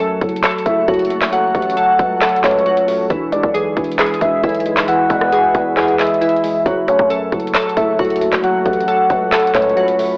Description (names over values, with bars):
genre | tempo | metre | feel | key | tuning
hip hop, trap | 135 BPM | 4/4 | half-time | F# minor | A4 = 441 Hz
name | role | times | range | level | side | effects
tine electric piano | accompaniment | 0.0-10.2 s | E3 to A3 | -23 LUFS | equal | overdrive, medium stereo tremolo
glassy FM pad | sustained chords | 0.6-10.2 s | G#4 to C#6 | -27 LUFS | equal | ensemble chorus, built-in reverb
glassy digital keys | arpeggios | 0.0-10.2 s | E3 to A4 | -19 LUFS | equal | chorus, phaser, analog delay
growling 808-style bass | bass | 0.0-10.2 s | E1 to F#2 | -23 LUFS | equal | none
trap drum kit | drums | 0.2-10.1 s | handclaps, hi-hat, kick drum, rim click, snare drum | -19 LUFS | equal | cassette tape
soft octave-layered synth lead | second line | 0.7-10.2 s | C#5 to F#5 | -16 LUFS | equal | chorus, analog delay
room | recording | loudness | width
light reverb | home recording on cassette, AM radio sound | -13 LUFS | side -28 dB against mid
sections
0.0-10.2 A section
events
kick muted 5.8-6.7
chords
0.0 F#m; 3.1 E; 6.7 F#m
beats
0.44 0.88 | 1.32 1.77 2.21 2.66 | 3.10 3.55 3.99 4.44 | 4.88 5.33 5.77 6.21 | 6.66 7.10 7.55 7.99 | 8.44 8.88 9.32 9.77